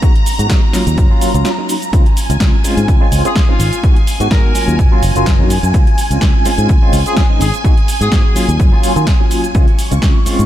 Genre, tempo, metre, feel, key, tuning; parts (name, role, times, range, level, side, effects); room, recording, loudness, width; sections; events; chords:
filtered disco house; 126 BPM; 4/4; swing 54% on 16ths; Db major; A4 = 441 Hz
mellow tine electric piano; accompaniment; 0.0-10.5 s; Gb3 to Gb4; -19 LUFS; equal; medium tremolo, phaser, sidechain pumping
phased string machine; sustained chords; 0.0-10.5 s; Ab5 to Db6; -22 LUFS; right 1 dB; ensemble chorus, phaser, sidechain pumping
electronic kick drum; drums; 0.0-10.1 s; -12 LUFS; equal
punchy analog drum machine; drums; 0.0-10.5 s; hi-hat, shaker, snare drum; -22 LUFS; equal; sidechain pumping on hats, sidechain pumping on perc
fingered electric bass; bass; 0.4-10.5 s; Gb1 to Eb3; -16 LUFS; equal; sidechain pumping
bright horn section; melody; 3.2-8.5 s; F4 to Bb4; -25 LUFS; left 2 dB; vintage 12-bit sampler grit, sidechain pumping, diffuse ambient delay
light reverb; -10 LUFS; side -12 dB against mid
0.0-10.5 A section
break 1.5-1.9
0.0 Abm7; 1.0 Gbmaj7; 1.9 Dbmaj7; 3.8 Abm7; 4.8 Gbmaj7; 5.7 Dbmaj7; 7.6 Abm7; 8.6 Gbmaj7; 9.5 Dbmaj7